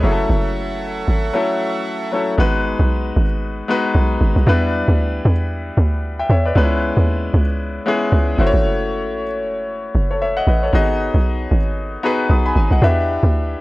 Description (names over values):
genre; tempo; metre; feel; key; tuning
amapiano; 115 BPM; 4/4; swing 58% on 16ths; G# phrygian; A4 = 444 Hz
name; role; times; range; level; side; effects
clear grand piano; accompaniment; 0.0-13.6 s; F#3 to D#6; -20 LUFS; left 2 dB; none
accordion; sustained chords; 0.0-2.4 s; A4 to C#6; -26 LUFS; right 4 dB; none
hollow log drum bass; bass; 0.0-13.6 s; F#1 to E2; -16 LUFS; equal; none
room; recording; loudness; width
small room ambience; dry, gritty hardware recording; -15 LUFS; side -19 dB against mid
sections
0.0-2.4 A section; 2.4-13.6 B section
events
drop 2.4-13.6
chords
0.0 F#m7; 2.4 G#m7; 4.5 Em7; 6.6 C#m7; 8.4 F#m7; 10.7 G#m7; 12.8 Em7